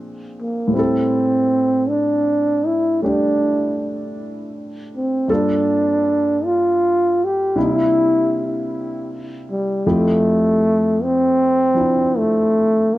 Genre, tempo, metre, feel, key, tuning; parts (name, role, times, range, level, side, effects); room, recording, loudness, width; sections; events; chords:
jazz ballad; 53 BPM; 4/4; swing 68% on 8ths; F major; A4 = 440 Hz
warm grand piano; accompaniment; 0.0-13.0 s; F2 to A4; -23 LUFS; equal; plate reverb
breathy trombone; melody; 0.4-13.0 s; G3 to G4; -17 LUFS; equal; analog delay
wet studio ambience, RT60 0.5 s; cassette tape; -15 LUFS; side -16 dB against mid
0.0-13.0 A section
0.0 Bb9; 0.7 Am7; 5.3 Gm9; 7.6 C9; 9.8 Fmaj7